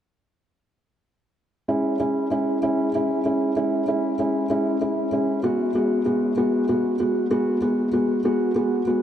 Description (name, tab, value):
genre	pop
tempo	64 BPM (dotted quarters)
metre	6/8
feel	straight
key	E major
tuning	A4 = 436 Hz
part	felt-muted upright piano	accompaniment	1.7-9.0 s	G#3 to F#4	-20 LUFS	equal	none
room	wet huge ambient reverb, RT60 8.2 s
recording	dreamy mix soaked in reverb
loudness	-20 LUFS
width	side -10 dB against mid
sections	1.7-9.0 A section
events	none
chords	1.7 E6; 5.4 G#m7